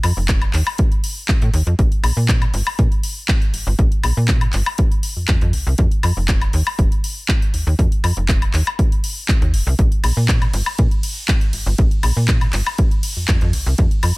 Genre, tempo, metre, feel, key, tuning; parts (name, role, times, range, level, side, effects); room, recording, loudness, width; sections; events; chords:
filtered disco house; 120 BPM; 4/4; straight; A4 = 440 Hz
slap-like FM bass; bass; 0.0-14.1 s; F1 to Bb2; -18 LUFS; equal; sidechain pumping
house drum kit; drums; 0.0-14.1 s; handclaps, hi-hat, ride cymbal, woodblock; -23 LUFS; left 2 dB; sidechain pumping on hats, small room ambience, sidechain pumping on perc, sidechain pumping on cymbals
electronic kick drum; drums; 0.3-13.9 s; -17 LUFS; equal; small room ambience
little or no reverb; -15 LUFS; side -23 dB against mid
0.0-14.2 A section